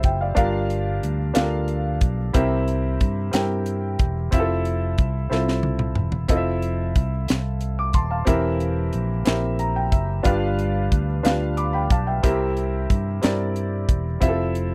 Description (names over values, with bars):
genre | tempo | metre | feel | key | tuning
slow gospel | 61 BPM (dotted quarters) | 6/8 | straight | F major | A4 = 440 Hz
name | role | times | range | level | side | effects
clear concert grand piano | accompaniment | 0.0-14.7 s | G2 to D6 | -27 LUFS | equal | none
fingered electric bass | bass | 0.0-14.7 s | Eb1 to G2 | -27 LUFS | equal | none
tight funk drum kit | drums | 0.0-14.7 s | hi-hat, kick drum, snare drum, toms | -23 LUFS | equal | none
room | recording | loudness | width
little or no reverb | dry, close 1970s-style studio recording | -22 LUFS | mono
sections
0.0-6.3 A section; 6.3-14.7 A section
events
drum fill 5.3-6.3; grand piano fill 9.3-10.3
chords
0.4 Gm7; 2.4 C7; 4.3 Fmaj7; 8.3 C7/E; 10.3 G7; 12.2 C7; 14.2 Fmaj7